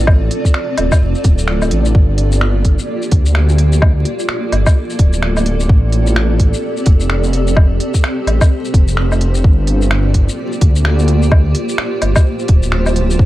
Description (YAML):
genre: future garage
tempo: 128 BPM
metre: 4/4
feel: swing 61% on 16ths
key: G minor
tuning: A4 = 440 Hz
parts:
  - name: granular cloud pad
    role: sustained chords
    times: 0.0-13.3 s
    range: Bb3 to D5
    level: -20 LUFS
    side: right 1 dB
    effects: built-in reverb, sidechain pumping
  - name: swelling detuned saw bass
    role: bass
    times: 0.0-13.3 s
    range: D1 to D2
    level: -14 LUFS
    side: equal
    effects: tube saturation, sidechain pumping
  - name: electronic kick drum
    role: drums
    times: 0.1-13.3 s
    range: none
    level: -10 LUFS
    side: equal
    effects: none
  - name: organic electronic drum kit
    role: drums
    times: 0.1-13.2 s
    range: finger snaps, hi-hat, shaker, woodblock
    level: -21 LUFS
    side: left 1 dB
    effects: none
room: little or no reverb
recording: dark, warm production, vinyl crackle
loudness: -11 LUFS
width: side -16 dB against mid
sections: 0.0-13.3 A section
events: none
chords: 0.0 Dm7; 1.9 Gm7; 5.7 D7sus4; 9.4 Gm7